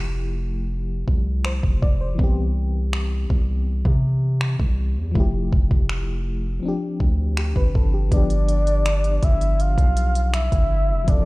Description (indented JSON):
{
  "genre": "contemporary R&B",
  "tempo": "81 BPM",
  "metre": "4/4",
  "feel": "straight",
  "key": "unclear",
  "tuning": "A4 = 442 Hz",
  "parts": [
    { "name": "FM electric piano with tremolo", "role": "accompaniment", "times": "0.0-11.3 s", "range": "E3 to D5", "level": "-29 LUFS", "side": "left 3 dB", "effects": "none" },
    { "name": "long sustained 808-style bass", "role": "bass", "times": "0.0-11.3 s", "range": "F1 to C3", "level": "-22 LUFS", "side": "equal", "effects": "none" },
    { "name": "smooth R&B drum kit", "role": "drums", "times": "1.1-11.3 s", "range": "finger snaps, hi-hat, kick drum", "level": "-21 LUFS", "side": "equal", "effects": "none" },
    { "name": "soft octave-layered synth lead", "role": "melody", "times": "8.1-11.3 s", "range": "D5 to F5", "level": "-25 LUFS", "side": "left 1 dB", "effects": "chorus" }
  ],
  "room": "little or no reverb",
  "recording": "played on a big sound system in a bare room, large studio reverb",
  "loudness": "-19 LUFS",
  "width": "side -22 dB against mid",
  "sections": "0.0-8.1 A section; 8.1-11.3 B section",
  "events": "none",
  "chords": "0.0 Fmaj9; 2.2 Cmaj7; 5.2 Fmaj9; 6.6 G7sus4; 8.1 G7"
}